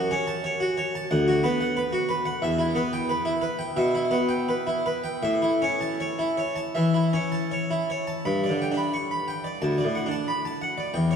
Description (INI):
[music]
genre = classical, baroque-style suite movement for harpsichord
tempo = 78-93 BPM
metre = 4/4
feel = rubato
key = D major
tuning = A4 = 439 Hz
[part]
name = harpsichord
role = solo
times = 0.0-11.2 s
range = D2 to C#6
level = -23 LUFS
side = equal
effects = none
[sound]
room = wet cathedral reverb, RT60 5.4 s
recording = dark, warm production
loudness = -23 LUFS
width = side -7 dB against mid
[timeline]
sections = 0.0-8.2 A section; 8.2-11.2 B section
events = none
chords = 0.0 F#m; 1.1 Bm/D; 2.4 Em; 5.2 A; 8.2 G; 9.6 D